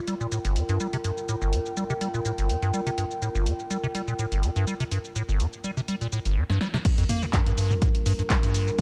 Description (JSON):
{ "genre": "acid house", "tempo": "124 BPM", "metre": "4/4", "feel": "swing 54% on 16ths", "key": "G minor", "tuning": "A4 = 436 Hz", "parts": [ { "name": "dark analog pad", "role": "sustained chords", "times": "0.0-8.8 s", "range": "G3 to Bb4", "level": "-42 LUFS", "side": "equal", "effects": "none" }, { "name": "warbly tape-like pad", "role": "texture", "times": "0.0-6.4 s", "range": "F4 to G5", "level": "-36 LUFS", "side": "equal", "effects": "chorus, built-in reverb, sidechain pumping" }, { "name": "acid bass, square", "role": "riff", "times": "0.1-8.8 s", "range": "G1 to Bb3", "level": "-28 LUFS", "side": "equal", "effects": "tube saturation, analog chorus, sidechain pumping" }, { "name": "punchy analog drum machine", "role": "drums", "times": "0.1-8.8 s", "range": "crash cymbal, handclaps, hi-hat, shaker, snare drum, toms", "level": "-35 LUFS", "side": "equal", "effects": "none" }, { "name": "electronic kick drum", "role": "drums", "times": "6.9-8.8 s", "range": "none", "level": "-26 LUFS", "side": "equal", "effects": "none" } ], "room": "light reverb", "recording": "dark, warm production", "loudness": "-26 LUFS", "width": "mono", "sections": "0.0-6.8 A section; 6.8-8.8 B section", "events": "drum fill 6.5-6.8; drop 6.8-8.8", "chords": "0.0 Gm7" }